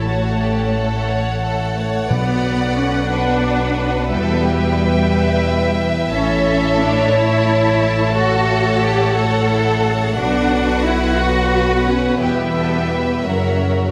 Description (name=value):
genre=cinematic, epic orchestral film score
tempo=60 BPM (dotted quarters)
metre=6/8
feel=straight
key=E dorian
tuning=A4 = 442 Hz
part: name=warm symphonic violin section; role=melody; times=0.0-13.8 s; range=E4 to D5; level=-29 LUFS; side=equal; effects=none
part: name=rich symphonic violin section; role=second line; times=0.0-13.9 s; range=E5 to A5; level=-28 LUFS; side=equal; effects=none
part: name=warm symphonic viola section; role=accompaniment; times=0.0-13.9 s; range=A#4 to F#5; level=-28 LUFS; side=equal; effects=none
part: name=clear trombone section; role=sustained chords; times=0.0-13.9 s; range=A2 to A3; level=-26 LUFS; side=equal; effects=none
part: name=mellow French horn section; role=sustained chords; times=0.0-13.9 s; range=A#3 to C#5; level=-27 LUFS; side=equal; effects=none
part: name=warm symphonic string section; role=sustained chords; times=0.0-13.9 s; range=A3 to F#5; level=-27 LUFS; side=equal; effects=none
part: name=dark symphonic cello section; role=bass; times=0.0-13.9 s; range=F#3 to A4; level=-23 LUFS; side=equal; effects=none
part: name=rich symphonic double bass section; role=bass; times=0.0-13.9 s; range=A1 to F#2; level=-23 LUFS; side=equal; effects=none
part: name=timpani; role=percussion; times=2.1-3.1 s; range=B2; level=-26 LUFS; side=equal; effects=none
room=moderate scoring stage reverb, RT60 2.1 s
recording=none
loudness=-17 LUFS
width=mono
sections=0.0-13.9 A section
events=none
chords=0.1 F#m/A; 2.1 Bm; 4.1 Em; 6.1 A; 8.1 F#m/A; 10.2 Bm; 12.2 Em; 13.3 F#7